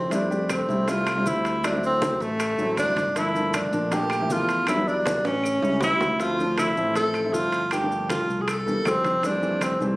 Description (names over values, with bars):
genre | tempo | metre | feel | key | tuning
Afro-Cuban jazz | 158 BPM | 4/4 | straight | F major | A4 = 441 Hz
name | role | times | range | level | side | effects
breathy tenor saxophone | melody | 0.0-9.8 s | A3 to A4 | -24 LUFS | equal | none
warm upright piano | accompaniment | 0.0-9.9 s | E3 to G4 | -28 LUFS | left 1 dB | none
modern bright fingered electric bass | bass | 0.0-10.0 s | G1 to F2 | -31 LUFS | equal | none
bongos | percussion | 0.1-10.0 s | none | -39 LUFS | left 2 dB | none
congas | percussion | 0.1-10.0 s | none | -33 LUFS | equal | none
maracas | percussion | 0.1-10.0 s | none | -41 LUFS | equal | none
timbales | percussion | 0.1-9.8 s | none | -31 LUFS | right 2 dB | none
claves | percussion | 0.5-9.8 s | none | -34 LUFS | equal | none
room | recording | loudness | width
light reverb | recorded on a phone in the room, studio reverb | -21 LUFS | side -20 dB against mid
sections
0.1-10.0 A section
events
drum fill 5.3-6.2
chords
0.1 Fmaj7; 1.6 D7; 3.2 Gm7; 4.7 Em7; 5.4 A7; 6.2 Dm9; 7.7 Gm7; 8.5 C7; 9.2 Fmaj7